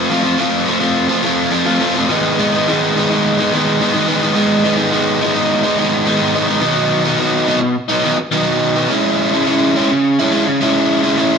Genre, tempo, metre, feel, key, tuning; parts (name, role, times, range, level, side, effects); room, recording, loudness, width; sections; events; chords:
rock; 106 BPM; 4/4; straight; A4 = 439 Hz
biting overdriven guitar; solo; 0.0-11.4 s; G#2 to F4; -13 LUFS; equal
wet stone room reverb, RT60 1.3 s; band playing live in one room; -13 LUFS; side -6 dB against mid
0.0-6.6 A section; 6.6-11.4 B section
0.0 F; 2.1 G#m; 6.6 B; 8.9 C#m